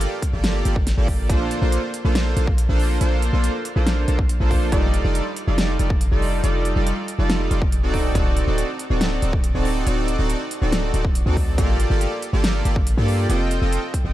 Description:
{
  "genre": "future bass",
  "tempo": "140 BPM",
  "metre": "4/4",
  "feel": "half-time",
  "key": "Bb major",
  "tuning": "A4 = 440 Hz",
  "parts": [
    { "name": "soft supersaw", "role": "riff", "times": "0.0-14.1 s", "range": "G3 to G5", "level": "-24 LUFS", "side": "right 1 dB", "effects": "sidechain pumping, dub echo" },
    { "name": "warm 808-style bass", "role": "bass", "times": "0.0-14.1 s", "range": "D1 to G2", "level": "-21 LUFS", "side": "equal", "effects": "sidechain pumping" },
    { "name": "big-room dance drum kit", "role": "drums", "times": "0.0-14.0 s", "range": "hi-hat, snare drum", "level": "-27 LUFS", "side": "equal", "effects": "none" },
    { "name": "electronic kick drum", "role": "drums", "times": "0.2-14.0 s", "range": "none", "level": "-21 LUFS", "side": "equal", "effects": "none" }
  ],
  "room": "digital ambience",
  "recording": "dark, warm production, faint mains hum",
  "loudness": "-18 LUFS",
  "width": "side -14 dB against mid",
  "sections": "0.0-14.1 A section",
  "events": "none",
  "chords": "0.0 Gm9; 1.3 Bbmaj9; 4.7 F13; 7.9 D7b9; 11.6 Gm9; 13.3 F9",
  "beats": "0.01 0.44 0.87 | 1.29 1.72 2.15 2.58 | 3.01 3.44 3.87 4.29 | 4.72 5.15 5.58 6.01 | 6.44 6.87 7.29 7.72 | 8.15 8.58 9.01 9.44 | 9.87 10.29 10.72 11.15 | 11.58 12.01 12.44 12.87 | 13.29 13.72"
}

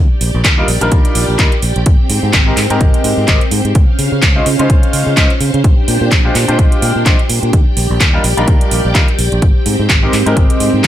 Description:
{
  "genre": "filtered disco house",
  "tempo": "127 BPM",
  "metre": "4/4",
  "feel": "swing 57% on 16ths",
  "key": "Eb major",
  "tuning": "A4 = 440 Hz",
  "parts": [
    { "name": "string machine, full ensemble", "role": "sustained chords", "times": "0.0-10.9 s", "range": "C4 to G5", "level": "-19 LUFS", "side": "right 1 dB", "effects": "ensemble chorus, sidechain pumping, low-pass filter" },
    { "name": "fingered electric bass", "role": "bass", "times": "0.0-10.9 s", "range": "Ab1 to Db3", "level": "-16 LUFS", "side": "equal", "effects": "sidechain pumping, low-pass filter" },
    { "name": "house drum kit", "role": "drums", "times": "0.2-10.9 s", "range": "handclaps, hi-hat", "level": "-16 LUFS", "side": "right 1 dB", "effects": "sidechain pumping on hats, small room ambience" },
    { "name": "electronic kick drum", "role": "drums", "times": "0.4-10.9 s", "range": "none", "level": "-11 LUFS", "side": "equal", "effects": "small room ambience" },
    { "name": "bright grand piano", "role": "accompaniment", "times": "0.6-10.9 s", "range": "G3 to C5", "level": "-18 LUFS", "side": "left 1 dB", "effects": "phaser, vintage 12-bit sampler grit, sidechain pumping, low-pass filter" }
  ],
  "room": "little or no reverb",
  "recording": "none",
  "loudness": "-9 LUFS",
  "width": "side -12 dB against mid",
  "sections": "0.0-10.9 A section",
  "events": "none",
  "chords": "0.0 Ebmaj7; 1.9 Abmaj7; 3.8 Dbmaj7; 5.6 Bb13; 7.5 Ebmaj7; 9.4 Abmaj7",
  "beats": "0.45 0.92 1.39 | 1.86 2.34 2.81 3.28 | 3.75 4.23 4.70 5.17 | 5.64 6.12 6.59 7.06 | 7.53 8.01 8.48 8.95 | 9.42 9.89 10.37 10.84"
}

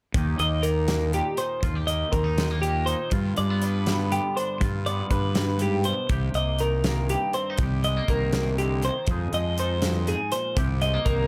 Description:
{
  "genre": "math rock and midwest emo",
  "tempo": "81 BPM (dotted quarters)",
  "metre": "6/8",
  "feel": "straight",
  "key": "C minor",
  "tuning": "A4 = 441 Hz",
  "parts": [
    { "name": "twangy electric guitar", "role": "accompaniment", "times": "0.1-11.3 s", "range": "Eb2 to Ab4", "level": "-35 LUFS", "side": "equal", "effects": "lush chorus" },
    { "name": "fuzz fingered electric bass", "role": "bass", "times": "0.1-11.3 s", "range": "C2 to G2", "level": "-28 LUFS", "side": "equal", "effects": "overdrive" },
    { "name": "modern studio drum kit", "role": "drums", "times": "0.1-11.2 s", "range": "hi-hat, kick drum, snare drum", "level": "-31 LUFS", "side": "equal", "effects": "none" },
    { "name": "twelve-string electric guitar", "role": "arpeggios", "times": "0.4-11.3 s", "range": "G4 to Eb5", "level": "-29 LUFS", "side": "equal", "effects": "none" }
  ],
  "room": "little or no reverb",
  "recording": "none",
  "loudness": "-25 LUFS",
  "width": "mono",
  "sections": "0.1-11.3 A section",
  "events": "none",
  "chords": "0.1 Eb; 3.1 G7; 6.1 Cm7; 9.1 Fm7; 10.6 Cm7",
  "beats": "| 0.14 0.89 | 1.63 2.37 | 3.12 3.86 | 4.60 5.35 | 6.09 6.84 | 7.58 8.33 | 9.07 9.82 | 10.56"
}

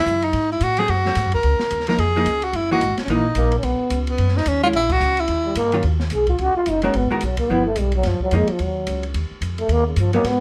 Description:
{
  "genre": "jazz, small-group swing and bop",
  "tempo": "218 BPM",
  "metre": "4/4",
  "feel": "swing 60% on 8ths",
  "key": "G# minor, Eb minor from 5.8 s",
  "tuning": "A4 = 444 Hz",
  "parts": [
    { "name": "breathy tenor saxophone", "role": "melody", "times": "0.0-5.6 s", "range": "B3 to A#4", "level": "-22 LUFS", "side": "equal", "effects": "none" },
    { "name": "upright bass", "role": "bass", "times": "0.0-10.4 s", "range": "F#1 to A2", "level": "-25 LUFS", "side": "equal", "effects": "none" },
    { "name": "open jazz drum kit", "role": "drums", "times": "0.1-10.3 s", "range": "crash cymbal, hi-hat, kick drum, ride cymbal, snare drum", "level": "-33 LUFS", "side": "equal", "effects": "none" },
    { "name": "vintage hollow-body jazz guitar", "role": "accompaniment", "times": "0.8-10.2 s", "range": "D#3 to Bb4", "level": "-25 LUFS", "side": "equal", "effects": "none" },
    { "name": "growling trombone", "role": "second line", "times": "3.4-10.4 s", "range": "Db3 to Ab4", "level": "-23 LUFS", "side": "equal", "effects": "none" }
  ],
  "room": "moderate studio reverb, RT60 0.6 s",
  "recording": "none",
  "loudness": "-20 LUFS",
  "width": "mono",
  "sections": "0.0-5.8 A section; 5.8-10.4 B section",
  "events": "band accent 4.9; trombone solo 5.8-10.4",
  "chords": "0.3 G#7b9; 1.4 C#69; 2.5 F#13; 3.6 Badd9; 4.7 A#dim; 5.3 D#7b9; 5.8 Ebm7; 6.9 Abm9; 7.5 G6; 8.0 Gb6; 9.1 Eb",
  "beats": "0.07 | 0.34 0.61 0.89 1.17 | 1.44 1.72 1.99 2.27 | 2.54 2.81 3.09 3.37 | 3.64 3.92 4.19 4.46 | 4.74 5.01 5.29 5.57 | 5.84 6.12 6.39 6.67 | 6.94 7.22 7.49 7.77 | 8.04 8.32 8.59 8.87 | 9.14 9.42 9.69 9.97 | 10.24"
}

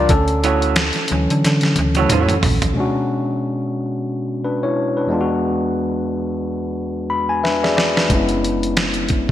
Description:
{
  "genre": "R&B, neo-soul",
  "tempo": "90 BPM",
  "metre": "4/4",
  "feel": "swing 57% on 16ths",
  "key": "B dorian",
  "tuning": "A4 = 440 Hz",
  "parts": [
    { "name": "overdriven tine electric piano", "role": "accompaniment", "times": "0.0-9.3 s", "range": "E2 to B5", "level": "-19 LUFS", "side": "left 2 dB", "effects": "none" },
    { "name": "slap-like FM bass", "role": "bass", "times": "0.0-2.7, 8.1-9.3 s", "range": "F#1 to D3", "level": "-20 LUFS", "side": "right 1 dB", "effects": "none" },
    { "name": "dusty soul sampler-style drum kit", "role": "drums", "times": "0.1-2.8, 7.4-9.3 s", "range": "hi-hat, kick drum, snare drum, toms", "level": "-19 LUFS", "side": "right 1 dB", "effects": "gated reverb" },
    { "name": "electric guitar through a small old amp", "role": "second line", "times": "0.4-2.3 s", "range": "A3 to C#5", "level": "-22 LUFS", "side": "right 6 dB", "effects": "none" }
  ],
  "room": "moderate lush hall reverb, RT60 2.0 s",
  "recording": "bright 1980s-style digital production",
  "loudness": "-16 LUFS",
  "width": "side -12 dB against mid",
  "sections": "0.0-2.8 A section; 2.8-9.3 B section",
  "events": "tine electric piano solo 0.0-2.8; drum fill 1.4-2.8, 7.4-8.1; tine electric piano fill 6.8-8.1",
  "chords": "0.1 Dmaj9; 2.8 Bm69; 5.1 E9; 8.1 F#7sus4",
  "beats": "| 0.10 0.76 1.43 2.10 | 2.76 3.43 4.10 4.76 | 5.43 6.10 6.76 7.43 | 8.10 8.76"
}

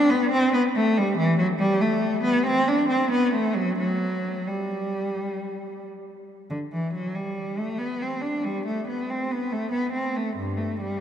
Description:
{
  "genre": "classical, baroque-style suite movement for unaccompanied cello",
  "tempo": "91 BPM (dotted quarters)",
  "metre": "12/8",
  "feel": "uneven beats, rubato",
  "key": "G major",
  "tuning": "A4 = 440 Hz",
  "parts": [
    { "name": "rich cello", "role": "solo", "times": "0.0-11.0 s", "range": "G2 to D4", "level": "-22 LUFS", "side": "equal", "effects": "none" }
  ],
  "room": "wet cathedral reverb, RT60 4.3 s",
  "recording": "none",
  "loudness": "-22 LUFS",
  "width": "side -9 dB against mid",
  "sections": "0.0-6.5 A section; 6.5-11.0 A section",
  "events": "none",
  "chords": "none",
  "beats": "0.53 | 1.17 1.81 2.46 3.12 | 3.80 4.48 5.17 5.84 | 6.52 7.17 7.81 8.45 | 9.10 9.74 10.38"
}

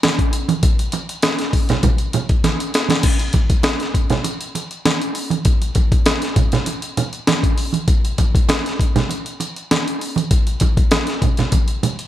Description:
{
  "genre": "funk",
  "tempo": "99 BPM",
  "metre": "4/4",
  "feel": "straight",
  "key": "none",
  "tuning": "none",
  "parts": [
    { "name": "breakbeat sampler-style drum kit", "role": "drums", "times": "0.0-12.1 s", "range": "crash cymbal, hi-hat, kick drum, snare drum", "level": "-16 LUFS", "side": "left 1 dB", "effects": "none" },
    { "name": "congas", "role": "percussion", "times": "0.0-12.0 s", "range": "none", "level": "-22 LUFS", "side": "right 5 dB", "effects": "none" }
  ],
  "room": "light reverb",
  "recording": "none",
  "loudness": "-16 LUFS",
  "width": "side -13 dB against mid",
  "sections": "0.0-3.0 A section; 3.0-12.1 B section",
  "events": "drum fill 2.4-3.0",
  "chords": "none",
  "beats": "0.03 | 0.63 1.23 1.83 2.44 | 3.04 3.65 4.25 4.85 | 5.46 6.07 6.67 7.28 | 7.88 8.49 9.10 9.70 | 10.31 10.92 11.52"
}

